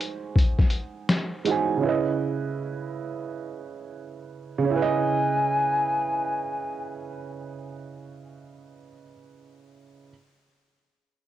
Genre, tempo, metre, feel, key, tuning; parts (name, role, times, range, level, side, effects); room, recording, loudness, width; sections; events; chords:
lo-fi hip hop; 83 BPM; 4/4; swing 65% on 16ths; C# minor; A4 = 439 Hz
dark upright piano; accompaniment; 0.0-10.1 s; C#3 to G#5; -28 LUFS; right 6 dB; cassette tape, low-pass filter
lo-fi sampler-style drum kit; drums; 0.0-1.7 s; hi-hat, kick drum, snare drum; -21 LUFS; left 1 dB; overdrive, cassette tape
breathy hollow jazz flute; melody; 4.7-6.8 s; G#5; -26 LUFS; left 2 dB; low-pass filter, cassette tape
moderate spring reverb, RT60 2.2 s; home recording on cassette; -23 LUFS; side -12 dB against mid
0.0-4.7 A section; 4.7-7.6 B section
0.0 G#7; 1.8 C#m9